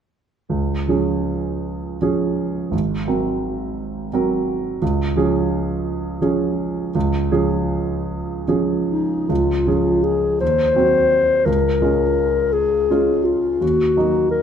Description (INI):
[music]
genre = classical, romantic duo for clarinet and grand piano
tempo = 46-59 BPM (dotted quarters)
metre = 6/8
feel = rubato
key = Db major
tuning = A4 = 441 Hz
[part]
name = clear concert grand piano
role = accompaniment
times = 0.5-14.4 s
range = Ab1 to Bb4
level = -19 LUFS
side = right 3 dB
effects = none
[part]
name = dark clarinet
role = melody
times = 8.9-14.4 s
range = Eb4 to C5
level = -17 LUFS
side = left 4 dB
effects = none
[sound]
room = light reverb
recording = close, detailed microphones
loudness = -17 LUFS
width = side -8 dB against mid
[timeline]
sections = 0.5-9.3 A section; 9.3-14.4 B section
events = none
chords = 0.5 Db; 2.7 Ab9; 4.8 Db; 10.4 Cdim/Eb; 11.5 Db; 13.6 Ebm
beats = | 0.50 1.66 | 2.73 3.79 | 4.82 5.88 | 6.95 8.08 | 9.30 10.41 | 11.47 12.55 | 13.62